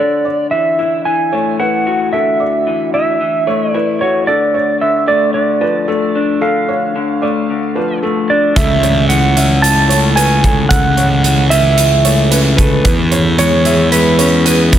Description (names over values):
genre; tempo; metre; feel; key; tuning
post-rock; 112 BPM; 4/4; straight; unclear; A4 = 439 Hz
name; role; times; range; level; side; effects
clean lap steel guitar; melody; 0.0-14.8 s; B4 to A5; -15 LUFS; right 2 dB; tape echo
electric guitar through a small old amp; arpeggios; 0.0-14.8 s; C#3 to B4; -18 LUFS; left 5 dB; tape echo
felt-muted upright piano; arpeggios; 0.0-14.8 s; A4 to E5; -22 LUFS; right 2 dB; tape echo
fuzz picked electric bass; bass; 8.6-14.8 s; C#2 to E2; -12 LUFS; equal; overdrive
huge arena drum kit; drums; 8.6-14.8 s; hi-hat, kick drum; -16 LUFS; right 1 dB; none
room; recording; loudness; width
light reverb, small room ambience; none; -10 LUFS; side -10 dB against mid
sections
0.0-14.8 A section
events
none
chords
0.0 Dadd9; 4.3 Dm; 8.6 A/C#; 12.9 E6